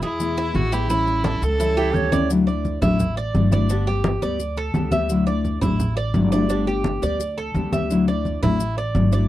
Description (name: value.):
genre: latin, Cuban son and guajira.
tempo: 172 BPM.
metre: 4/4.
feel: straight.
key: D major.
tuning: A4 = 440 Hz.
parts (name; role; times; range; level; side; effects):
rich violin; melody; 0.0-2.1 s; E4 to A4; -24 LUFS; equal; none.
nylon-string guitar; accompaniment; 0.0-9.3 s; B2 to G4; -23 LUFS; left 3 dB; none.
Cuban tres; arpeggios; 0.0-9.3 s; D4 to E5; -26 LUFS; right 2 dB; none.
upright bass; bass; 0.0-9.3 s; G1 to E2; -24 LUFS; equal; none.
congas; percussion; 0.0-9.1 s; none; -24 LUFS; equal; none.
maracas; percussion; 0.0-9.3 s; none; -39 LUFS; left 15 dB; none.
breathy bright jazz flute; second line; 1.8-2.3 s; E4 to C#5; -25 LUFS; right 9 dB; none.
room: little or no reverb.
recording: dry, close 1970s-style studio recording.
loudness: -18 LUFS.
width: side -14 dB against mid.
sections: 0.0-2.3 A section; 2.3-9.3 B section.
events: none.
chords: 0.0 E; 0.9 A7; 2.3 Dadd9; 3.7 Gadd9; 5.1 Dadd9; 6.5 Gadd9; 7.9 Dadd9.